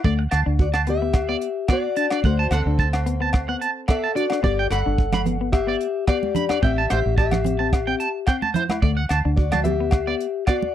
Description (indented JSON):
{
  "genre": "highlife guitar band",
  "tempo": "109 BPM",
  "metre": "4/4",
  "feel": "swing 54% on 16ths",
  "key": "unclear",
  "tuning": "A4 = 440 Hz",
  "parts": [
    { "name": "semi-hollow electric guitar", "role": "accompaniment", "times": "0.0-10.7 s", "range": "A3 to E4", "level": "-27 LUFS", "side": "left 7 dB", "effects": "none" },
    { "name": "electric guitar at the edge of break-up", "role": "arpeggios", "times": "0.0-10.6 s", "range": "C5 to B5", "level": "-26 LUFS", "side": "right 6 dB", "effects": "tremolo, slapback echo" },
    { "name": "tight funk drum kit", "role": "drums", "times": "0.0-10.6 s", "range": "hi-hat, kick drum, rim click", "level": "-21 LUFS", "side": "right 1 dB", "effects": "none" },
    { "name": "deep dub fingered electric bass", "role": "bass", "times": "0.1-10.1 s", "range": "G1 to D2", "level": "-23 LUFS", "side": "right 1 dB", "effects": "none" },
    { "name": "agogo bells", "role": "percussion", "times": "0.3-10.6 s", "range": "none", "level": "-32 LUFS", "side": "left 2 dB", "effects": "none" },
    { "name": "fingerpicked plugged-in steel-string acoustic guitar", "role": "melody", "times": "0.6-10.7 s", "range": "C4 to F#5", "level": "-25 LUFS", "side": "left 4 dB", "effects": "none" },
    { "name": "congas", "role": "percussion", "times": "5.1-10.7 s", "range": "none", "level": "-26 LUFS", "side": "right 8 dB", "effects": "none" }
  ],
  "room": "little or no reverb",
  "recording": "dry, close 1970s-style studio recording",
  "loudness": "-19 LUFS",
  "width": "side -11 dB against mid",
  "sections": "0.0-10.7 A section",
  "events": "none",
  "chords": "0.0 D; 4.4 G; 6.6 Am7; 8.8 D"
}